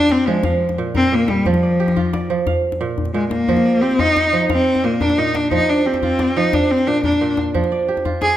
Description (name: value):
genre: west african traditional, West African string and xylophone music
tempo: 118 BPM (dotted quarters)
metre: 12/8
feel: straight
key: unclear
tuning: A4 = 441 Hz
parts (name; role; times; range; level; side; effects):
- rich cello; melody; 0.0-8.4 s; F3 to Ab4; -16 LUFS; left 1 dB; tape echo
- kora; arpeggios; 0.0-8.4 s; Bb2 to F5; -20 LUFS; right 5 dB; none
- djembe; percussion; 0.0-8.3 s; none; -24 LUFS; left 2 dB; none
room: wet recital hall reverb, RT60 1.3 s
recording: none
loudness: -15 LUFS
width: side -12 dB against mid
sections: 0.0-8.4 A section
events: cello solo 0.0-8.4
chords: 0.4 Bb; 1.5 Dmadd11/F; 2.5 Bb; 3.5 F13sus4; 4.5 Bb; 5.5 F5; 6.5 Bb; 7.5 Fsus2